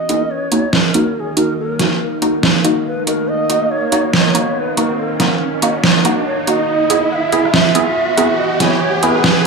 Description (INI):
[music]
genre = deep dubstep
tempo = 141 BPM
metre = 4/4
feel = swing 60% on 16ths, half-time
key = Eb phrygian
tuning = A4 = 439 Hz
[part]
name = long shakuhachi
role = melody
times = 0.0-9.5 s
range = Ab4 to Gb5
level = -20 LUFS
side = right 2 dB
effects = dub echo
[part]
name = overtone-sweeping drone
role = sustained chords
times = 0.0-9.5 s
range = Eb3 to Gb4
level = -22 LUFS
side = left 1 dB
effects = chorus, built-in reverb
[part]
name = soft dub sub bass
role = bass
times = 0.0-9.4 s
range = none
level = barely audible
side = none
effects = none
[part]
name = riser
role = sound effects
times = 1.3-9.5 s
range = none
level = -22 LUFS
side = right 2 dB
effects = none
[part]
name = filtered dub chord stab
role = stabs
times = 0.1-9.2 s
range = Bb3 to G#4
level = -18 LUFS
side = right 1 dB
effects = phaser, wide subtle chorus, dub echo
[part]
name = dubstep drum kit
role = drums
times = 0.1-9.3 s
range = hi-hat, rim click, snare drum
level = -15 LUFS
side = right 2 dB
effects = none
[sound]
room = wet plate reverb, RT60 1.2 s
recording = echo-heavy mix, small room ambience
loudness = -13 LUFS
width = side -4 dB against mid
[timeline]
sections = 0.0-9.5 A section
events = build-up 0.0-9.5; riser 1.3-9.5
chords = 0.0 Ebm; 6.7 E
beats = 0.30 0.73 1.16 | 1.58 2.01 2.43 2.86 | 3.28 3.71 4.13 4.56 | 4.99 5.41 5.84 6.26 | 6.69 7.11 7.54 7.96 | 8.39 8.81 9.24